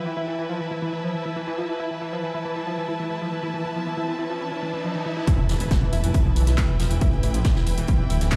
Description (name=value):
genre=driving peak-time techno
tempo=138 BPM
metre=4/4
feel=straight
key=E phrygian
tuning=A4 = 440 Hz
part: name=warm studio string section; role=texture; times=0.0-8.4 s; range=E4 to A5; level=-34 LUFS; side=equal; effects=sidechain pumping
part: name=overdriven synth lead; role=riff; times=0.1-8.4 s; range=E3 to E4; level=-31 LUFS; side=equal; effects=distortion, subtle chorus, sidechain pumping, tape echo
part: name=riser and impact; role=sound effects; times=2.9-7.0 s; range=none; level=-35 LUFS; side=equal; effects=none
part: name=electronic kick drum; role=drums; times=5.3-8.4 s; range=none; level=-24 LUFS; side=equal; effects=overdrive
part: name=punchy analog drum machine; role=drums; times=5.3-8.4 s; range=handclaps, hi-hat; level=-36 LUFS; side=equal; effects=overdrive
part: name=soft brush drum kit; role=drums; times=5.3-8.4 s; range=hi-hat, snare drum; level=-41 LUFS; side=equal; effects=high-pass filter on hats, high-pass filter on snare, high-pass filter on room
part: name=detuned saw bass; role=bass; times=5.4-8.3 s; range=D1 to B1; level=-25 LUFS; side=equal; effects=tube saturation, sidechain pumping
room=light reverb, small room ambience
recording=played on a big sound system in a bare room, large studio reverb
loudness=-24 LUFS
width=mono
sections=0.0-5.3 A section; 5.3-8.4 B section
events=riser 2.9-5.3; drop 5.3-8.4; impact 5.3-7.0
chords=0.0 E5; 5.3 Em